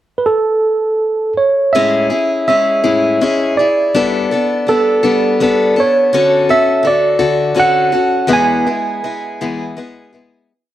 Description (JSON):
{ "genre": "rock", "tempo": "55 BPM (dotted quarters)", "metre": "6/8", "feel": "straight", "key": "A major", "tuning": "A4 = 438 Hz", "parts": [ { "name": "bright tine electric piano", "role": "melody", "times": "0.2-10.1 s", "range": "A4 to G#5", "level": "-13 LUFS", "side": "right 2 dB", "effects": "slapback echo" }, { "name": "picked acoustic archtop guitar", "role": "accompaniment", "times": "1.7-10.5 s", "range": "E2 to A4", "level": "-15 LUFS", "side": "left 4 dB", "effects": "none" } ], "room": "moderate plate reverb, RT60 3.3 s", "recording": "dark, warm production", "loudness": "-11 LUFS", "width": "side -13 dB against mid", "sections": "0.0-1.7 pickup bar; 1.7-10.5 verse", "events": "fade-out 8.3-10.5", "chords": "0.0 N.C.; 1.7 Amaj7; 3.9 Gadd9; 6.1 Dmaj7; 8.3 E", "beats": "0.63 | 1.73 2.83 | 3.93 5.03 | 6.13 7.22 | 8.32 9.42" }